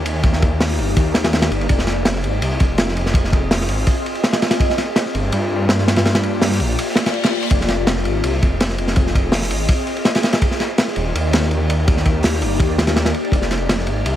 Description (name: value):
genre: drum and bass, jungle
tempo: 165 BPM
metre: 4/4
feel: straight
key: F dorian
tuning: A4 = 440 Hz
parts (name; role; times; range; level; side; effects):
- detuned saw bass; bass; 0.0-14.2 s; Eb1 to G2; -20 LUFS; equal; none
- crunchy breakbeat drum kit; drums; 0.1-14.1 s; hi-hat, kick drum, ride cymbal, snare drum; -17 LUFS; equal; none
- reverse cymbal; sound effects; 6.9-7.5 s; none; -29 LUFS; left 6 dB; none
room: small room ambience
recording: none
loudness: -15 LUFS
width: side -12 dB against mid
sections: 0.0-14.2 A section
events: reverse cymbal 6.9-7.5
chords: none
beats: | 0.24 0.60 0.96 1.33 | 1.69 2.05 2.42 2.78 | 3.15 3.51 3.87 4.24 | 4.60 4.96 5.33 5.69 | 6.05 6.42 6.78 7.14 | 7.51 7.87 8.24 8.60 | 8.96 9.33 9.69 10.05 | 10.42 10.78 11.14 11.51 | 11.87 12.24 12.60 12.96 | 13.33 13.69 14.05